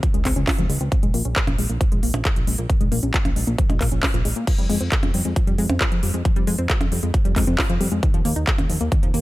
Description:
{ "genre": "uplifting trance", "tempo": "135 BPM", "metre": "4/4", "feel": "straight", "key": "F minor", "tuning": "A4 = 440 Hz", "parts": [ { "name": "wide unison pluck", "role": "arpeggios", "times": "0.0-9.2 s", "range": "Eb3 to F4", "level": "-26 LUFS", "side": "left 2 dB", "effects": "sidechain pumping, tape echo" }, { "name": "electronic kick drum", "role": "drums", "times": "0.0-9.0 s", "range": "none", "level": "-20 LUFS", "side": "equal", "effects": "none" }, { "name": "techno drum kit", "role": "drums", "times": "0.0-9.2 s", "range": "crash cymbal, handclaps, hi-hat, percussion blips", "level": "-26 LUFS", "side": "right 1 dB", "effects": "none" }, { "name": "fat analog bass", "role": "bass", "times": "0.1-9.2 s", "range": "Bb1 to Bb2", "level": "-24 LUFS", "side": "equal", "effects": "sidechain pumping" } ], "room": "digital ambience", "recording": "none", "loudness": "-18 LUFS", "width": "side -17 dB against mid", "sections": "0.0-9.2 A section", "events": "filter sweep on synth arpeggio sound 0.0-9.2", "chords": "0.0 Dbmaj7; 0.9 Bb7(no3); 4.5 Fmadd9; 8.0 Ebsus2" }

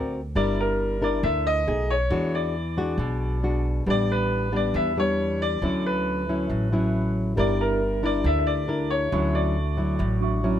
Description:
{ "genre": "bossa nova", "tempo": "137 BPM", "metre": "4/4", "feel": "straight", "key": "D major", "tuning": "A4 = 441 Hz", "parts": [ { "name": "clear baby grand piano", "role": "melody", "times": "0.0-10.6 s", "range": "Bb4 to E5", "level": "-27 LUFS", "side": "left 1 dB", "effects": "none" }, { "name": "nylon-string guitar", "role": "accompaniment", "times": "0.0-10.6 s", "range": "A2 to Bb4", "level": "-26 LUFS", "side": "left 1 dB", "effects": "none" }, { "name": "upright bass", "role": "bass", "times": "0.0-10.6 s", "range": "G1 to E2", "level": "-27 LUFS", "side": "equal", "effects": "none" }, { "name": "tine electric piano", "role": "accompaniment", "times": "7.3-10.6 s", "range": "D4 to C#6", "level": "-32 LUFS", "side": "right 4 dB", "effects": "medium stereo tremolo" } ], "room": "light reverb", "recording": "none", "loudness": "-22 LUFS", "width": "side -10 dB against mid", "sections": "0.0-10.6 A section", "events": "none", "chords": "0.4 Gm6; 1.7 B13; 2.1 E9; 3.9 A9sus4; 5.6 Dmaj9; 7.4 Gm6; 9.1 Dmaj9" }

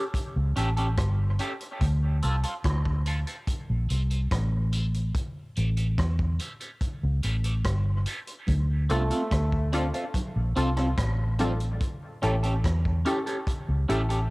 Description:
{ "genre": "dub reggae", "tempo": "72 BPM", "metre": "4/4", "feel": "straight", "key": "D minor", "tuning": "A4 = 440 Hz", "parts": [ { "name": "electric guitar at the edge of break-up", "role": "accompaniment", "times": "0.0-14.2 s", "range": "C4 to A4", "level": "-33 LUFS", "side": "right 1 dB", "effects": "phaser, high-pass filter, cassette tape, dub echo" }, { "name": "vintage drum kit", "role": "drums", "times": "0.1-14.3 s", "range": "hi-hat, kick drum, rim click", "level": "-31 LUFS", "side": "equal", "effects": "none" }, { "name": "vintage muted fingered electric bass", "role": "bass", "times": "0.4-14.3 s", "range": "G1 to E2", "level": "-25 LUFS", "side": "equal", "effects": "none" }, { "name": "congas", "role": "percussion", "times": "8.5-11.6 s", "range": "none", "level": "-39 LUFS", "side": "right 2 dB", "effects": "none" }, { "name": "bright trombone", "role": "melody", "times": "8.9-9.7 s", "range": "A3", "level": "-35 LUFS", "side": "equal", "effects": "cassette tape, dub echo" }, { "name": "filtered dub chord stab", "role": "stabs", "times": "8.9-14.2 s", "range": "C4 to A4", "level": "-32 LUFS", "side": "left 1 dB", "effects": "chorus, cassette tape, dub echo" } ], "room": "light reverb, studio ambience", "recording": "home recording on cassette", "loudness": "-24 LUFS", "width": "side -24 dB against mid", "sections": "0.0-14.3 A section", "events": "break 0.0-8.5; filter sweep on clean electric guitar 0.0-8.5; part muted 11.8-14.3", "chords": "0.0 A7; 1.8 Dm7; 5.1 A7; 8.5 Dm7; 11.8 A7" }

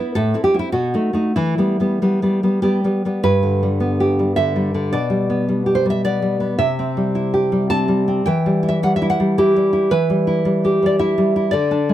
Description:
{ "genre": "romantic piece for solo classical guitar", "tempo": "92-112 BPM", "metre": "3/4", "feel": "rubato", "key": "E minor, G major from 3.2 s", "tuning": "A4 = 439 Hz", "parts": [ { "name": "nylon-string guitar", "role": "solo", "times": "0.0-11.9 s", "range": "G2 to A5", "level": "-16 LUFS", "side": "equal", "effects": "none" } ], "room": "light reverb", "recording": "none", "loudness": "-16 LUFS", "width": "side -12 dB against mid", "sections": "0.0-3.2 A section; 3.2-11.9 B section", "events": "none", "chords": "0.1 Am7; 0.7 B7; 1.4 Em; 3.2 G; 4.9 G/B; 6.6 C; 8.3 Em" }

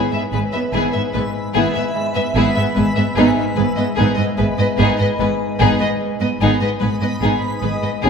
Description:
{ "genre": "cinematic, suspense film score", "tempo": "74 BPM", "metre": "5/4", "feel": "straight", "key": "G# minor", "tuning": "A4 = 440 Hz", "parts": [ { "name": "rich studio violin section", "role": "melody", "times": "0.0-8.1 s", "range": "G#4 to E5", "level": "-23 LUFS", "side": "left 4 dB", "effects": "none" }, { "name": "warm chamber violin section", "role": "second line", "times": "0.0-8.1 s", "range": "D#4 to B4", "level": "-25 LUFS", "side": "left 2 dB", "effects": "none" }, { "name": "warm studio viola section", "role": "accompaniment", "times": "0.0-8.1 s", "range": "B3", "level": "-23 LUFS", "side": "right 3 dB", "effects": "none" }, { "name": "backwards swelling texture", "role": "sustained chords", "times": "0.0-8.1 s", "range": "B4 to B5", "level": "-25 LUFS", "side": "equal", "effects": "built-in reverb" }, { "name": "Celtic harp", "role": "riff", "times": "0.0-8.1 s", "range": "G#2 to G#3", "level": "-22 LUFS", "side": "left 5 dB", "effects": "none" }, { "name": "warm studio cello section", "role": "bass", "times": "0.1-8.1 s", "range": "G#2", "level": "-23 LUFS", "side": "right 4 dB", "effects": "none" }, { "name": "dark studio double bass section", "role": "bass", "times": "0.3-8.1 s", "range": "G#1", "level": "-24 LUFS", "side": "right 4 dB", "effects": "none" }, { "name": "felt-muted upright piano", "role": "texture", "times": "8.0-8.1 s", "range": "C#4 to C#5", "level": "-28 LUFS", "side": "left 2 dB", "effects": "none" } ], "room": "wet scoring stage reverb, RT60 1.8 s", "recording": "none", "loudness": "-15 LUFS", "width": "side -6 dB against mid", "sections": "0.0-8.1 A section", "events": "none", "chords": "0.0 E/G#; 3.2 G#m" }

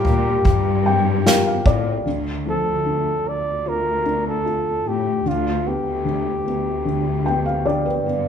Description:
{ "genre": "pop ballad", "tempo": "75 BPM", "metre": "4/4", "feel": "straight", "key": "G minor", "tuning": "A4 = 440 Hz", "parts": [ { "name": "breathy flugelhorn", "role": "melody", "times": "0.0-8.1 s", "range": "F4 to D5", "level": "-23 LUFS", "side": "equal", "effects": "none" }, { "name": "felt-muted upright piano", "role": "accompaniment", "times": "0.0-8.3 s", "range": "D3 to G5", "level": "-23 LUFS", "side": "left 2 dB", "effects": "none" }, { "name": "warm analog pad", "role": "sustained chords", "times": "0.0-2.0 s", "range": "G3 to Bb4", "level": "-32 LUFS", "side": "right 1 dB", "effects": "chorus" }, { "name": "dark symphonic cello section", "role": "bass", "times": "0.0-8.3 s", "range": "D2 to Bb2", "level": "-24 LUFS", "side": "left 1 dB", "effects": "none" }, { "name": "unplugged drum kit", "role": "drums", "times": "0.0-1.8 s", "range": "kick drum, snare drum, toms", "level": "-19 LUFS", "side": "equal", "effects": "none" } ], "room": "moderate large studio reverb, RT60 1.1 s", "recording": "band playing live in one room", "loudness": "-18 LUFS", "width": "side -8 dB against mid", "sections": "0.0-2.1 A section; 2.1-8.3 B section", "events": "felt piano fill 0.5-2.1, 6.9-8.3", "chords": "0.0 Gm7; 2.1 Dm; 5.3 G/D" }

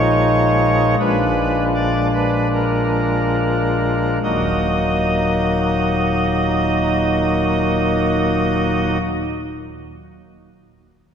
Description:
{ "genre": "classical, chorale-style piece for pipe organ", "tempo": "34-43 BPM", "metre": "4/4", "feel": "rubato", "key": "Eb minor", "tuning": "A4 = 440 Hz", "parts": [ { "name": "pipe organ, cornet", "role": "solo", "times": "0.0-9.0 s", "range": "Eb1 to Eb5", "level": "-16 LUFS", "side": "equal", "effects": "none" } ], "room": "wet church reverb, RT60 2.7 s", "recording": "recorded in a church or concert hall", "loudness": "-16 LUFS", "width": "side -8 dB against mid", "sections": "0.0-4.2 A section; 4.2-11.0 B section", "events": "slowing down 0.0-4.2", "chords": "0.0 Bb7sus4; 1.0 Bb7; 4.2 Ebm" }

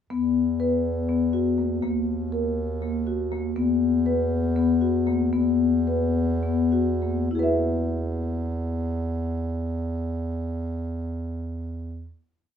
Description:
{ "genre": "contemporary instrumental, chamber music in an uneven meter", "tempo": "197-244 BPM (eighths)", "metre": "7/8", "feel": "straight", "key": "E lydian", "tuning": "A4 = 441 Hz", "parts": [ { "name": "marimba with soft mallets", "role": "arpeggios", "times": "0.1-12.2 s", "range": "A#3 to E5", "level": "-23 LUFS", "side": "left 3 dB", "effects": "none" }, { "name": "warm bass clarinet", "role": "bass", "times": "0.1-12.1 s", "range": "D#2 to E2", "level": "-27 LUFS", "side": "right 1 dB", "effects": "none" } ], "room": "wet studio reverb, RT60 0.5 s", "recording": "heard from further back in the room", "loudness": "-22 LUFS", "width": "side -8 dB against mid", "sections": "0.1-7.3 A section; 7.3-11.6 final chord", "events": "slowing down 3.6-7.3", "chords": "0.1 E5; 1.8 D#5; 3.6 E5; 7.3 E" }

